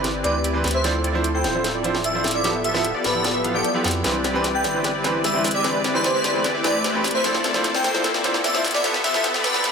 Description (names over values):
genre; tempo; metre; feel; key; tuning
future bass; 150 BPM; 4/4; half-time; C major; A4 = 440 Hz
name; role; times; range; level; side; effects
bright concert grand piano; accompaniment; 0.0-9.7 s; E3 to C5; -27 LUFS; right 3 dB; digital delay
big bright polysynth; riff; 0.0-9.7 s; B3 to G5; -23 LUFS; left 1 dB; wide subtle chorus
saturated sub bass; bass; 0.0-9.7 s; D1 to F2; -30 LUFS; equal; none
trap drum kit; drums; 0.0-9.7 s; hi-hat, rim click, snare drum; -26 LUFS; equal; high-pass filter on hats, studio reverb, high-pass filter on snare, high-pass filter on toms
riser and reverse cymbal; sound effects; 1.5-9.7 s; none; -32 LUFS; equal; none
airy dreamy lead; melody; 0.2-9.7 s; B4 to G5; -25 LUFS; equal; chorus, tape echo
room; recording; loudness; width
moderate huge ambient reverb, RT60 7.1 s; high-pass filter; -19 LUFS; side -6 dB against mid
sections
0.0-9.7 A section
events
build-up 0.0-9.7; drum fill 0.0-9.7; filter sweep on analog polysynth 0.0-9.7; filter sweep 0.0-9.7; riser 1.5-9.7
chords
0.0 Cmaj9; 0.8 Dm9; 2.4 G13/D; 4.0 Cmaj9; 7.2 Dm9; 8.8 G13/D